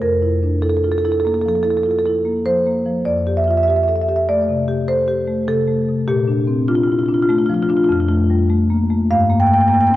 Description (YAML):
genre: classical, contemporary piece for solo marimba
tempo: 99 BPM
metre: 5/4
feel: rubato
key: F major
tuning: A4 = 440 Hz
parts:
  - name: marimba with medium hard mallets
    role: solo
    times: 0.0-10.0 s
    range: F2 to G5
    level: -14 LUFS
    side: equal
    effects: none
room: wet concert hall reverb, RT60 2.4 s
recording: worn, warbling old tape, cassette tape, warbly pitch drift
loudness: -15 LUFS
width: side -15 dB against mid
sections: 0.0-10.0 A section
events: none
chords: 0.0 Bbmaj7(no3)/F; 3.1 Fadd9; 6.1 Bbmaj7; 7.9 Fadd9; 9.1 Gm7